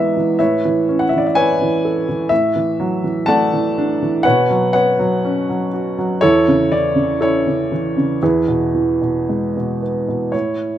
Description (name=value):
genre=classical, lyrical solo piano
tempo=54-63 BPM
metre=4/4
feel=rubato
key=A major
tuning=A4 = 440 Hz
part: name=warm upright piano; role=solo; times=0.0-10.8 s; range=E2 to A5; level=-14 LUFS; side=equal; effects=none
room=light reverb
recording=close, detailed microphones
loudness=-14 LUFS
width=side -11 dB against mid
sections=0.0-10.3 A section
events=none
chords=0.4 Aadd9; 2.3 Dadd9/A; 4.2 Bsus2; 6.2 A/E; 8.2 E